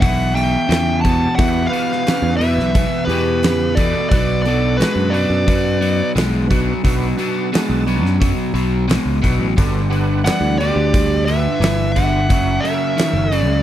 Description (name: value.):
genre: blues rock power trio and southern rock.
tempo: 88 BPM.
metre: 4/4.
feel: straight.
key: B minor.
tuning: A4 = 444 Hz.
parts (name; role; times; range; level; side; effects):
bluesy overdriven lead guitar; melody; 0.0-6.1, 10.2-13.6 s; B4 to A5; -21 LUFS; equal; distortion.
lead guitar through a small cranked amp; second line; 0.0-6.1, 10.3-13.6 s; F#4 to F#5; -26 LUFS; right 4 dB; overdrive.
overdriven electric guitar; riff; 0.0-13.6 s; E2 to G#3; -20 LUFS; left 1 dB; none.
picked electric bass; bass; 0.0-13.6 s; F#1 to F#2; -19 LUFS; equal; none.
huge arena drum kit; drums; 0.0-13.5 s; hi-hat, kick drum, snare drum; -20 LUFS; equal; none.
overdriven tonewheel organ; sustained chords; 1.0-13.6 s; E3 to A5; -28 LUFS; right 4 dB; slow rotary speaker, chorus vibrato.
room: little or no reverb.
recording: dry, close 1970s-style studio recording.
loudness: -14 LUFS.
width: side -12 dB against mid.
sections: 0.0-13.6 A section.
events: none.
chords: 0.0 Em; 4.1 Bm; 9.6 Gmaj7; 12.3 F#7.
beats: 0.03 0.71 | 1.39 2.07 2.75 3.43 | 4.11 4.80 5.48 6.16 | 6.84 7.52 8.21 8.89 | 9.57 10.25 10.93 11.61 | 12.29 12.97.